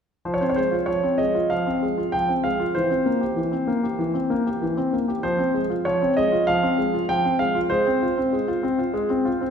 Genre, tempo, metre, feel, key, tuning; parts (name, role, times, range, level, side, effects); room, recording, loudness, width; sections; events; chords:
classical-period piano sonatina; 97 BPM; 4/4; rubato; F minor; A4 = 440 Hz
warm concert grand piano; solo; 0.3-9.5 s; E3 to G5; -20 LUFS; equal
wet concert hall reverb, RT60 2.0 s; recorded in a church or concert hall; -20 LUFS; side -7 dB against mid
0.3-9.5 A section
0.3 Fm; 2.8 C7/E; 5.2 Fm; 7.7 Fm/Ab